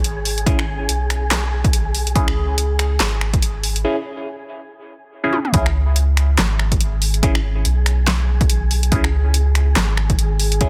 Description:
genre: deep dubstep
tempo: 142 BPM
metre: 4/4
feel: swing 58% on 16ths, half-time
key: C# minor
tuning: A4 = 441 Hz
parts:
  - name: soft dub sub bass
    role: bass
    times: 0.0-10.7 s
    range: G#1 to C#2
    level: -21 LUFS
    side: equal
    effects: none
  - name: deep house drum kit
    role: drums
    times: 0.0-10.7 s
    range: finger snaps, handclaps, hi-hat, snare drum, toms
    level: -24 LUFS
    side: equal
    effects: overdrive, high-pass filter on hats, high-pass filter on snare, high-pass filter on toms
  - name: wind-like tuned noise texture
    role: texture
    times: 0.0-10.7 s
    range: G#4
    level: -33 LUFS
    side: equal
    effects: built-in reverb
  - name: overdriven tine electric piano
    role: stabs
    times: 0.5-10.7 s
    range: C#4 to G#4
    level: -28 LUFS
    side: equal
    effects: phaser, low-pass filter, dub echo
  - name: electronic kick drum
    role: drums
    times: 0.5-10.7 s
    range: none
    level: -21 LUFS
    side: equal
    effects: overdrive
room: little or no reverb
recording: dense, heavily limited modern master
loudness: -18 LUFS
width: mono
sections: 0.0-5.5 A section; 5.5-10.7 B section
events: build-up 0.0-5.5; break 3.8-5.5; drum fill 5.3; drop 5.5-10.7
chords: 0.0 C#5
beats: 0.05 | 0.47 0.89 1.31 1.74 | 2.16 2.58 3.00 3.43 | 3.85 4.27 4.69 5.12 | 5.54 5.96 6.38 6.81 | 7.23 7.65 8.07 8.50 | 8.92 9.34 9.76 10.19 | 10.61

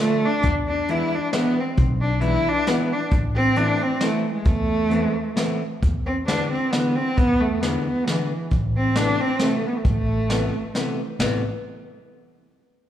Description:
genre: musette waltz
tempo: 134 BPM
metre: 3/4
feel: swing 55% on 8ths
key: A harmonic minor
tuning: A4 = 440 Hz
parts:
  - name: warm cello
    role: melody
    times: 0.0-10.7 s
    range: E3 to E4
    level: -22 LUFS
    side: equal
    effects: none
  - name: vintage hollow-body jazz guitar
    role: accompaniment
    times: 0.0-11.4 s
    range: C3 to F4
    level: -27 LUFS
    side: left 2 dB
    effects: slapback echo
  - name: upright bass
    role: bass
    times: 0.4-11.4 s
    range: A1 to E2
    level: -24 LUFS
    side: equal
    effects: none
  - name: vintage brush drum kit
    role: drums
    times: 0.4-11.3 s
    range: hi-hat, kick drum, ride cymbal, snare drum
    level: -25 LUFS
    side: equal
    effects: none
room: light reverb, studio reverb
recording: live gig heard through the venue's PA, club reverb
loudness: -19 LUFS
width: side -11 dB against mid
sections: 0.0-5.8 A section; 5.8-11.2 B section; 11.2-12.5 C section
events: none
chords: 0.4 E7; 3.1 Amadd9; 5.8 E7; 8.5 Amadd9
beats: | 0.43 0.89 1.33 | 1.78 2.22 2.67 | 3.11 3.56 4.00 | 4.45 4.90 5.36 | 5.82 6.27 6.72 | 7.17 7.62 8.07 | 8.51 8.95 9.40 | 9.85 10.29 10.75 | 11.20

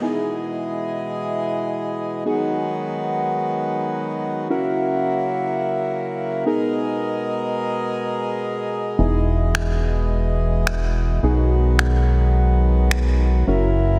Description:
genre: dance-pop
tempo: 107 BPM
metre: 4/4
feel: straight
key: B major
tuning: A4 = 440 Hz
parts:
  - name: deep mellow chord stab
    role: accompaniment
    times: 0.0-14.0 s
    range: B3 to A#4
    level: -27 LUFS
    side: equal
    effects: chorus, phaser
  - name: pedal harmonium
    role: sustained chords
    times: 0.0-14.0 s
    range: B2 to D#5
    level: -26 LUFS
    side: equal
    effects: none
  - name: chorused synth bass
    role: bass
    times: 9.0-14.0 s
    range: E1 to B1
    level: -20 LUFS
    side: equal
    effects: none
  - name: electronic finger snaps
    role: drums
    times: 9.5-13.0 s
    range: none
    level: -29 LUFS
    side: equal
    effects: soft clipping on snare
room: moderate lush hall reverb, RT60 2.0 s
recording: dense, heavily limited modern master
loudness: -21 LUFS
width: mono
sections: 0.0-14.0 A section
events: none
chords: 0.0 Emaj7; 2.3 B6; 4.5 F#7; 6.5 G#madd9; 9.0 Emaj7; 11.2 B6; 13.5 F#7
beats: | 0.02 0.58 1.14 1.70 | 2.26 2.82 3.38 3.94 | 4.50 5.06 5.62 6.18 | 6.75 7.30 7.87 8.43 | 8.99 9.55 10.11 10.67 | 11.23 11.79 12.35 12.91 | 13.47

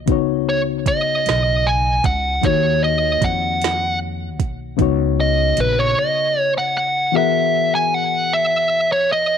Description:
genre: slow six-eight R&B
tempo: 51 BPM (dotted quarters)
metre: 6/8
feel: straight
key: unclear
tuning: A4 = 440 Hz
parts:
  - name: reed electric piano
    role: accompaniment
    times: 0.0-9.4 s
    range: Db3 to F#5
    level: -22 LUFS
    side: left 15 dB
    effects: none
  - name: upright bass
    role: bass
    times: 0.0-5.9 s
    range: Bb1 to F2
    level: -23 LUFS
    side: right 1 dB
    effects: none
  - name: smooth R&B drum kit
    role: drums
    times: 0.1-5.8 s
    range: hi-hat, kick drum, snare drum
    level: -21 LUFS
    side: right 5 dB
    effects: none
  - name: fuzz lead guitar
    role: melody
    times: 0.5-9.4 s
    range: Cb5 to Ab5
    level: -17 LUFS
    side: right 2 dB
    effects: distortion, tape echo
room: little or no reverb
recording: 1960s-style stereo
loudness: -16 LUFS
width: side -8 dB against mid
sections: 0.0-7.1 A section; 7.1-9.4 B section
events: lead electric guitar solo 0.0-7.1; break 6.0-7.1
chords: 0.1 Db9sus4; 2.4 Ebm9; 4.8 Db9sus4; 7.1 Eadd9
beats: | 0.08 1.26 | 2.43 3.61 | 4.79 5.96 | 7.14 8.31

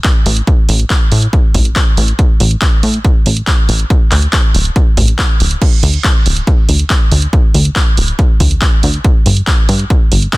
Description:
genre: uplifting trance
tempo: 140 BPM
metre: 4/4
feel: straight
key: unclear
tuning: A4 = 440 Hz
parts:
  - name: electronic kick drum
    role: drums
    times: 0.0-10.4 s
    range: none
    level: -11 LUFS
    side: equal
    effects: none
  - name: punchy analog drum machine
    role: drums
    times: 0.0-10.4 s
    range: crash cymbal, handclaps, hi-hat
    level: -18 LUFS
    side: right 1 dB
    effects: none
  - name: plucky analog bass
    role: bass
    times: 0.3-10.3 s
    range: D1 to A2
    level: -12 LUFS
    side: equal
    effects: sidechain pumping
room: little or no reverb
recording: dense, heavily limited modern master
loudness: -9 LUFS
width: side -21 dB against mid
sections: 0.0-10.4 A section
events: none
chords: none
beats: 0.05 | 0.47 0.90 1.33 1.76 | 2.19 2.62 3.05 3.47 | 3.90 4.33 4.76 5.19 | 5.62 6.05 6.47 6.90 | 7.33 7.76 8.19 8.62 | 9.05 9.47 9.90 10.33

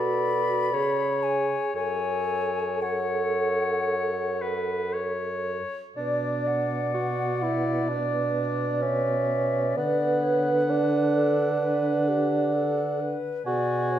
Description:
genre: classical, slow romantic movement for wind quintet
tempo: 56-67 BPM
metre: 4/4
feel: rubato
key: F# minor, B minor from 6.0 s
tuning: A4 = 439 Hz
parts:
  - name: mellow hollow silver concert flute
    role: melody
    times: 0.0-14.0 s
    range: G4 to B5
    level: -31 LUFS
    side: left 6 dB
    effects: none
  - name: warm oboe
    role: second line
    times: 0.0-14.0 s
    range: B4 to G#5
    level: -31 LUFS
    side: left 3 dB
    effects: none
  - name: dark clarinet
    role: accompaniment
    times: 0.0-14.0 s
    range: G#4 to B4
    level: -32 LUFS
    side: right 6 dB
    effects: none
  - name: mellow French horn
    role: accompaniment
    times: 0.0-14.0 s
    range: B2 to A4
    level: -30 LUFS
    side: equal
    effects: none
  - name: mellow bassoon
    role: bass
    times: 0.0-14.0 s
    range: F#2 to F#4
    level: -28 LUFS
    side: right 2 dB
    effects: none
room: wet recital hall reverb, RT60 1.4 s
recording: none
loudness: -23 LUFS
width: side -11 dB against mid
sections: 0.0-6.0 A section; 6.0-14.0 B section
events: none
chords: 0.0 Bm7; 0.7 C#5; 1.8 F#m; 6.0 Bm; 9.8 Bm/D; 13.5 G#dim/B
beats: 0.73 | 1.75 2.82 3.89 4.94 | 5.97 6.95 7.90 8.82 | 9.78 10.71 11.63 12.55 | 13.47

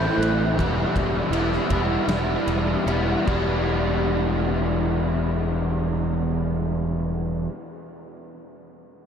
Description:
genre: rock, shoegaze and dream pop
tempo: 73-83 BPM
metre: 4/4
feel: straight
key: E minor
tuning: A4 = 441 Hz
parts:
  - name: breathy mellow jazz flute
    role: melody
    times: 0.0-2.8 s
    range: E6 to G6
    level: -35 LUFS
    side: left 1 dB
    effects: ping-pong delay
  - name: overdriven semi-hollow guitar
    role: riff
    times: 0.0-7.5 s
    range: E2 to E4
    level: -23 LUFS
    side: equal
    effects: ensemble chorus
  - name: overdriven fingered electric bass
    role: bass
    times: 0.0-7.5 s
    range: E1 to A1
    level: -26 LUFS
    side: equal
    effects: none
  - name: big rock drum kit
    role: drums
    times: 0.2-3.5 s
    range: crash cymbal, kick drum, ride cymbal, snare drum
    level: -31 LUFS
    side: equal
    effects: none
room: wet huge ambient reverb, RT60 7.5 s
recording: dreamy mix soaked in reverb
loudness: -21 LUFS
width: side -8 dB against mid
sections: 0.0-3.7 A section; 3.7-7.0 B section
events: slowing down 0.0-3.7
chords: 0.0 Am7; 0.6 Em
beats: | 0.58 1.33 2.09 2.87 | 3.69 4.51 5.33 6.16

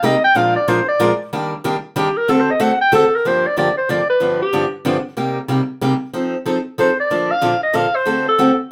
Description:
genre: jazz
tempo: 186 BPM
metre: 3/4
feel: swing 61% on 8ths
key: G minor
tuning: A4 = 442 Hz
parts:
  - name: clear clarinet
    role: melody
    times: 0.0-4.7, 6.8-8.6 s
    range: G4 to G5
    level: -18 LUFS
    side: equal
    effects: plate reverb
  - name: picked steel-string acoustic guitar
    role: accompaniment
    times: 0.0-8.5 s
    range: G2 to Bb4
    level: -20 LUFS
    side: equal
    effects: none
room: moderate studio ambience, RT60 0.5 s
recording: none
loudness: -17 LUFS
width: mono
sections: 0.0-3.2 A section; 3.2-8.7 B section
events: clarinet solo 0.0-3.2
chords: 0.4 Bb7; 1.3 Ebmaj7; 2.3 D7; 3.2 Gm7; 4.2 G7; 5.2 Cm7; 6.1 F7; 7.1 Bbmaj7; 8.1 D7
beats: 0.04 | 0.36 0.68 1.00 | 1.32 1.64 1.96 | 2.28 2.60 2.92 | 3.24 3.56 3.89 | 4.21 4.53 4.85 | 5.17 5.50 5.82 | 6.14 6.46 6.78 | 7.11 7.43 7.75 | 8.07 8.39

